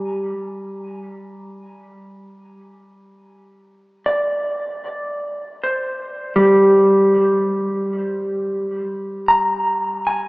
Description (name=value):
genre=ambient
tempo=free time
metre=none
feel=none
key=unclear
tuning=A4 = 439 Hz
part: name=mellow electric guitar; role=solo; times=0.0-0.3, 4.1-10.3 s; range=G3 to Bb5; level=-17 LUFS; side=equal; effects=diffuse ambient delay
room=wet cathedral reverb, RT60 6.8 s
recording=in a vast, echoing space, small speaker sound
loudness=-16 LUFS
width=side -25 dB against mid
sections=0.0-3.7 A section; 3.7-10.3 B section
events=none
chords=0.0 N.C.; 3.7 Csus2; 6.1 Gsus4; 8.5 N.C.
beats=free time